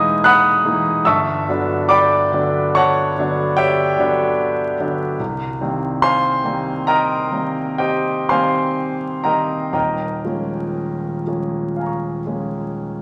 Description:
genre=classical, impressionist solo piano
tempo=58-75 BPM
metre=5/4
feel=rubato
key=unclear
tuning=A4 = 440 Hz
part: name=clear concert grand piano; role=solo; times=0.0-13.0 s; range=Eb1 to F#6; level=-19 LUFS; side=equal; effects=none
room=wet recital hall reverb, RT60 1.4 s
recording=vinyl crackle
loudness=-19 LUFS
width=mono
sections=0.0-13.0 A section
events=none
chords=0.0 Emaj7#11; 1.1 Gmaj7; 5.2 Cm7; 9.7 Eb9sus4

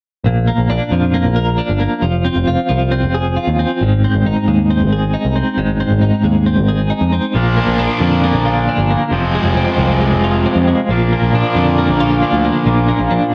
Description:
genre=rock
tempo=135 BPM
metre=4/4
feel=straight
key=unclear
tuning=A4 = 440 Hz
part: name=overdriven picked electric bass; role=bass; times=0.2-13.2 s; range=F1 to F2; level=-19 LUFS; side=equal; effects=none
part: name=twelve-string electric guitar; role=riff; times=0.3-13.3 s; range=F2 to Bb4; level=-18 LUFS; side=equal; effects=tremolo, cassette tape
part: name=overdriven electric guitar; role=riff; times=7.3-13.3 s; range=F2 to D4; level=-20 LUFS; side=equal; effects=lush chorus, cassette tape, tape echo
room=moderate booth ambience, RT60 0.2 s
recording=home recording on cassette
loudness=-15 LUFS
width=mono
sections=0.3-13.3 A section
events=none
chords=0.3 Bb; 2.0 Fm; 3.8 Ab; 7.3 Bb; 9.1 Fm; 10.9 Bb

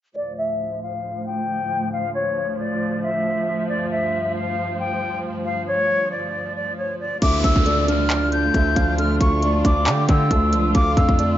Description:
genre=hip hop, trap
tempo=136 BPM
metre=4/4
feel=half-time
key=D harmonic minor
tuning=A4 = 438 Hz
part: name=concert flute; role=melody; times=0.2-11.4 s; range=C#5 to G6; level=-23 LUFS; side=left 1 dB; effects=low-pass filter
part: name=dark studio string section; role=sustained chords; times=0.2-11.4 s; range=D2 to F4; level=-27 LUFS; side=right 1 dB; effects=low-pass filter
part: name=breathy flute-like synth lead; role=second line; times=7.2-11.4 s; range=D5 to G5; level=-28 LUFS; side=left 4 dB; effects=chorus, ping-pong delay
part: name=dark grand piano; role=accompaniment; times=7.2-11.4 s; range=D3 to D5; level=-23 LUFS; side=right 2 dB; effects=none
part: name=distorted 808-style bass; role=bass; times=7.2-11.4 s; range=C#2 to D3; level=-22 LUFS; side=equal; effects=distortion
part: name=trap drum kit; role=drums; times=7.2-11.3 s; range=crash cymbal, handclaps, hi-hat, kick drum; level=-20 LUFS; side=equal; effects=none
part: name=downlifter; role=sound effects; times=7.2-10.7 s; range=none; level=-31 LUFS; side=right 1 dB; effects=none
room=light reverb, digital ambience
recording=nothing above 7.6 kHz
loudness=-18 LUFS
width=side -12 dB against mid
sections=0.2-7.2 A section; 7.2-11.4 B section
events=filter sweep 0.2-7.2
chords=0.2 Dm

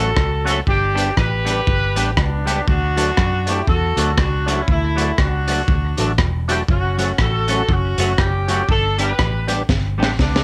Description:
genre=ska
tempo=120 BPM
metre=4/4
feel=swing 59% on 8ths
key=D major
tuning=A4 = 440 Hz
part: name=mellow horn section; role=melody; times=0.0-10.4 s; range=A3 to B4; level=-24 LUFS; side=equal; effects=none
part: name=semi-hollow electric guitar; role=accompaniment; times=0.0-10.1 s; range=F#3 to G4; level=-28 LUFS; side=equal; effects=none
part: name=percussive tonewheel organ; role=stabs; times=0.0-10.1 s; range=C#4 to B4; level=-29 LUFS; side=equal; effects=overdrive, chorus vibrato, slow rotary speaker
part: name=vintage muted fingered electric bass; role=bass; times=0.0-10.4 s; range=E1 to F#2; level=-23 LUFS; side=equal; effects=none
part: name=crunchy breakbeat drum kit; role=drums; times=0.2-10.4 s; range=hi-hat, kick drum, rim click, snare drum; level=-23 LUFS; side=equal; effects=tape echo
room=small room ambience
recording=none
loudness=-18 LUFS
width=mono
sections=0.0-10.4 A section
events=drum fill 9.7-10.4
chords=0.0 F#m; 0.7 G; 2.7 D; 6.7 F#m; 8.7 G

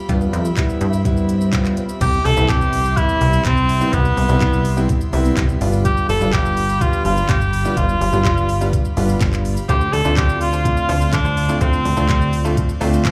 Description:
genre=dance-pop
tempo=125 BPM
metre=4/4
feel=straight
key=unclear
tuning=A4 = 436 Hz
part: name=airy breathy pad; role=sustained chords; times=0.0-13.1 s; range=F4 to C6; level=-34 LUFS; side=equal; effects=chorus, sidechain pumping
part: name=swell and impact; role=sound effects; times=1.0-3.9 s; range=none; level=-33 LUFS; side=equal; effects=none
part: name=warm concert grand piano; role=accompaniment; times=0.1-13.1 s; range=G3 to G4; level=-26 LUFS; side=equal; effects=sidechain pumping, slapback echo
part: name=plucky analog bass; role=bass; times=0.1-13.1 s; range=G1 to G2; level=-21 LUFS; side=equal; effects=sidechain pumping
part: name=smooth R&B drum kit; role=drums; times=0.1-13.1 s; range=crash cymbal, handclaps, hi-hat, kick drum, shaker, snare drum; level=-24 LUFS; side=equal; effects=none
part: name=warm cor anglais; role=melody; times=2.0-12.5 s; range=B3 to A4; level=-22 LUFS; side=equal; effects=tape echo, slapback echo
part: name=direct-recorded clean electric guitar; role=riff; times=9.7-13.1 s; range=C4 to C5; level=-33 LUFS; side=equal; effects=lush chorus, slapback echo
room=little or no reverb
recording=live gig heard through the venue's PA, club reverb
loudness=-17 LUFS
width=mono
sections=0.0-2.0 A section; 2.0-13.1 B section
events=impact 2.0-3.9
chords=0.0 G7; 2.0 Cmaj7; 5.6 G7; 9.7 Dm7

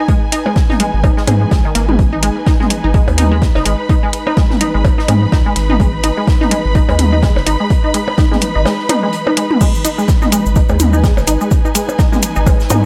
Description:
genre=minimal techno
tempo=126 BPM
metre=4/4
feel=swing 57% on 16ths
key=G# minor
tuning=A4 = 440 Hz
part: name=resonant blip pluck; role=riff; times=0.0-12.8 s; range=D#3 to G#4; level=-21 LUFS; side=equal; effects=lush chorus, cassette tape, sidechain pumping, analog delay
part: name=dark studio string section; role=texture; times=0.0-12.9 s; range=D#4 to B5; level=-25 LUFS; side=equal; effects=sidechain pumping
part: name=electronic kick drum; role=drums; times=0.1-12.6 s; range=none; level=-16 LUFS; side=equal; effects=none
part: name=huge arena drum kit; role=drums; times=0.1-12.8 s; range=hi-hat, snare drum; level=-35 LUFS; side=equal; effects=sidechain pumping on hats, high-pass filter on hats, high-pass filter on snare, high-pass filter on room
part: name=booming analog drum machine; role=drums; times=0.3-12.8 s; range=crash cymbal, hi-hat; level=-21 LUFS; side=equal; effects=none
part: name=electronic percussion blips and toms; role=percussion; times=0.5-12.8 s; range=none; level=-21 LUFS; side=equal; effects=none
part: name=saturated sub bass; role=bass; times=0.9-12.9 s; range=F#1 to G#2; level=-17 LUFS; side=equal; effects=sidechain pumping
part: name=cabasa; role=percussion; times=9.6-12.8 s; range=none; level=-28 LUFS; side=equal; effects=none
part: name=zap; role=sound effects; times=12.7-12.8 s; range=none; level=-23 LUFS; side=equal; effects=none
room=studio reverb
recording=dry, gritty hardware recording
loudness=-13 LUFS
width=mono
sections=0.0-12.9 A section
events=kick drops out 8.7-9.6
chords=0.0 G#m

